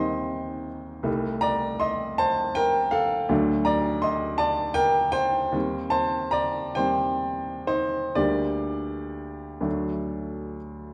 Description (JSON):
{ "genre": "classical, romantic nocturne for solo piano", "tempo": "40-55 BPM (dotted quarters)", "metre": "6/8", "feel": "rubato", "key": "unclear", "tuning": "A4 = 445 Hz", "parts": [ { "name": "clear baby grand piano", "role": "solo", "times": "0.0-10.9 s", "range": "C2 to C6", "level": "-26 LUFS", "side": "equal", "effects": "none" } ], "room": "moderate recital hall reverb, RT60 1.3 s", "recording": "dark, warm production", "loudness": "-26 LUFS", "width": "mono", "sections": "0.0-10.9 A section", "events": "none", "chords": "0.0 Cm/Eb; 1.1 Am7b5/C; 3.3 D; 5.5 Cm/Eb; 8.2 Gm/D; 9.6 D" }